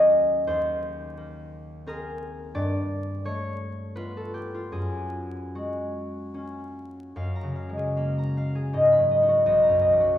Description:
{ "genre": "classical, solo harp piece", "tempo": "71-89 BPM", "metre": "3/4", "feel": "rubato", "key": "F# major", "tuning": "A4 = 437 Hz", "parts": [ { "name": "concert harp", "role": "solo", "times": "0.0-10.2 s", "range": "B1 to B5", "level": "-23 LUFS", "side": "equal", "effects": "none" } ], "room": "wet recital hall reverb, RT60 1.4 s", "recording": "heard from further back in the room, vinyl crackle", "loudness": "-23 LUFS", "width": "side -11 dB against mid", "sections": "0.0-7.2 A section; 7.2-10.2 B section", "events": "none", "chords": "0.5 Abadd9/Eb; 2.6 G9; 4.7 F#add9; 8.7 G#m7; 9.5 Bmaj7" }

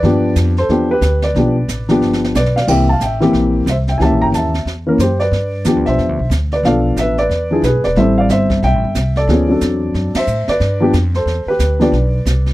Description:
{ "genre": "jazz piano trio", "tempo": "182 BPM", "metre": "4/4", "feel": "swing 61% on 8ths", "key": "G mixolydian", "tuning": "A4 = 440 Hz", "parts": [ { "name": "dark baby grand piano", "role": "melody", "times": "0.0-12.5 s", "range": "E3 to A#5", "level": "-14 LUFS", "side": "equal", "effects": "none" }, { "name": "upright bass", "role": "bass", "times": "0.0-12.5 s", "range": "E1 to A2", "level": "-17 LUFS", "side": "equal", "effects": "none" }, { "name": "jazz brush drum kit", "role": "drums", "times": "0.0-12.5 s", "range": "brushed snare drum, crash cymbal, hi-hat, kick drum, ride cymbal, snare drum", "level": "-24 LUFS", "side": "right 2 dB", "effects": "none" } ], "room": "little or no reverb", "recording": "dry, close 1970s-style studio recording", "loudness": "-12 LUFS", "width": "side -17 dB against mid", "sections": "0.0-12.5 A section", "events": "drum fill 2.0-2.7; band accent 10.1", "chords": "0.0 G7; 2.7 C7; 4.0 C#dim7; 5.3 G7; 6.6 Bm7b5; 7.3 E7; 8.0 Am7; 9.3 D7; 10.6 G7" }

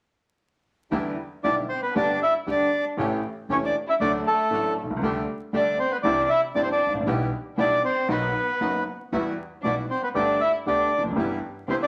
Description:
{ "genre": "tango", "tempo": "117 BPM", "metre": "4/4", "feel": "rubato", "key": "E minor", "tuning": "A4 = 438 Hz", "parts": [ { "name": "bright upright piano", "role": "accompaniment", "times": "0.9-11.9 s", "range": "E1 to A4", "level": "-30 LUFS", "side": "equal", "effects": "none" }, { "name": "bandoneon", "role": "stabs", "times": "0.9-11.9 s", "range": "G3 to G4", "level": "-36 LUFS", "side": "equal", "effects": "none" }, { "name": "upright bass", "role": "bass", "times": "0.9-11.9 s", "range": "E1 to E2", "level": "-40 LUFS", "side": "equal", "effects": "none" }, { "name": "bandoneon", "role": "melody", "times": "1.4-11.9 s", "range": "A4 to E5", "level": "-25 LUFS", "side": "equal", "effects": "none" }, { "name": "warm studio violin section", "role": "second line", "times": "1.4-11.9 s", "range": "A3 to E4", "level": "-34 LUFS", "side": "equal", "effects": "none" } ], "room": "wet studio reverb, RT60 0.8 s", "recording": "vinyl crackle", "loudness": "-25 LUFS", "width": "mono", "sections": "0.9-11.9 A section", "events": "none", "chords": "0.9 Em7; 1.9 G; 3.0 A7; 4.0 D; 5.0 Gsus2/D; 6.0 Cadd9; 7.1 Em/B; 8.1 B; 9.1 Emadd9; 10.1 Gadd9; 11.2 Em/G" }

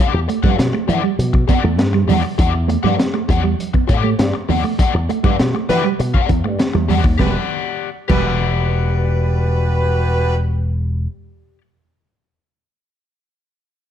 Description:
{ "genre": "funk", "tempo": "100 BPM", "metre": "4/4", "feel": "straight", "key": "E minor", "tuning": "A4 = 440 Hz", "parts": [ { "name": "crunchy overdriven guitar", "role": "accompaniment", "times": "0.0-11.6 s", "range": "G4 to F#5", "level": "-23 LUFS", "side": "left 8 dB", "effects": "wah" }, { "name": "mellow electric guitar", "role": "riff", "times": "0.1-8.2 s", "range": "G3 to B3", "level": "-22 LUFS", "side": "right 9 dB", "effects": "none" }, { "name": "slap bass with an envelope filter", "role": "bass", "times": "0.1-11.1 s", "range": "E1 to E3", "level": "-18 LUFS", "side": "equal", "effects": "none" }, { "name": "crunchy breakbeat drum kit", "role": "drums", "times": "0.3-8.3 s", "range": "crash cymbal, hi-hat, kick drum, snare drum", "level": "-18 LUFS", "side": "equal", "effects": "none" }, { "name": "congas", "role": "percussion", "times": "0.4-8.3 s", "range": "none", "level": "-27 LUFS", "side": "right 6 dB", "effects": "none" }, { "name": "warm horn section", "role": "second line", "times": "5.7-10.4 s", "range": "G3 to B4", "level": "-22 LUFS", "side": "equal", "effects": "none" } ], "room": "light reverb", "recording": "dark, warm production", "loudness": "-15 LUFS", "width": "side -10 dB against mid", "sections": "0.0-7.2 A section; 7.2-9.6 B section", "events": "band accent 4.8-7.2", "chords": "0.0 Em9" }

